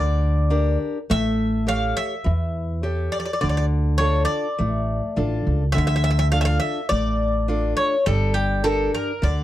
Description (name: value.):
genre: greek folk, Greek bouzouki band.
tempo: 103 BPM.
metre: 4/4.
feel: straight.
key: D harmonic minor.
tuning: A4 = 441 Hz.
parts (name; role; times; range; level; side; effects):
Greek bouzouki; melody; 0.0-9.4 s; G4 to F5; -24 LUFS; left 1 dB; none.
picked old ladder-braced acoustic guitar; accompaniment; 0.0-9.4 s; D3 to C#5; -26 LUFS; left 1 dB; none.
upright bass; bass; 0.0-9.4 s; G1 to E2; -22 LUFS; equal; none.
room: light reverb.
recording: dark, warm production.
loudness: -19 LUFS.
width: side -13 dB against mid.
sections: 0.0-5.7 A section; 5.7-9.4 A section.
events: none.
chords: 0.0 Gm; 1.1 A7; 3.4 Dm; 8.1 Gm.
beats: 0.51 | 1.09 1.67 2.25 2.83 | 3.42 4.00 4.58 5.16 | 5.74 6.32 6.90 7.48 | 8.06 8.64 9.22.